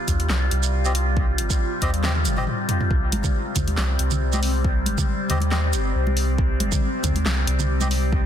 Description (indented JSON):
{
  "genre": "deep dubstep",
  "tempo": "138 BPM",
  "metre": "4/4",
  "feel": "swing 55% on 16ths, half-time",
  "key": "C minor",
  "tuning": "A4 = 438 Hz",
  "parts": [
    { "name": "overtone-sweeping drone", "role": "sustained chords", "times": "0.0-8.3 s", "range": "C3 to F4", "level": "-26 LUFS", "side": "left 1 dB", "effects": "chorus, built-in reverb, phaser" },
    { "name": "soft dub sub bass", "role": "bass", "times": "0.1-8.3 s", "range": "G1 to Eb2", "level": "-22 LUFS", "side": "equal", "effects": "none" },
    { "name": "deep house drum kit", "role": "drums", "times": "0.1-8.0 s", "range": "handclaps, hi-hat, shaker, snare drum, toms", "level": "-27 LUFS", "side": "equal", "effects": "none" },
    { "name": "electronic kick drum", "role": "drums", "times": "0.1-8.2 s", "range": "none", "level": "-23 LUFS", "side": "equal", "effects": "none" },
    { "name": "melodica", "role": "stabs", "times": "0.9-7.9 s", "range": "C4 to Eb5", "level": "-32 LUFS", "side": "left 2 dB", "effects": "dub echo" },
    { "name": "congas", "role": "percussion", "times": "3.1-7.9 s", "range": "none", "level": "-30 LUFS", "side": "right 3 dB", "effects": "dub echo" }
  ],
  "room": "light reverb",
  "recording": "dense, heavily limited modern master",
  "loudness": "-20 LUFS",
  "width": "side -10 dB against mid",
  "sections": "0.0-8.3 A section",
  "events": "drum fill 2.0-2.9",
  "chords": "0.0 Cm",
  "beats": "0.30 0.73 | 1.17 1.60 2.04 2.47 | 2.91 3.34 3.78 4.21 | 4.65 5.08 5.52 5.95 | 6.38 6.82 7.25 7.69 | 8.12"
}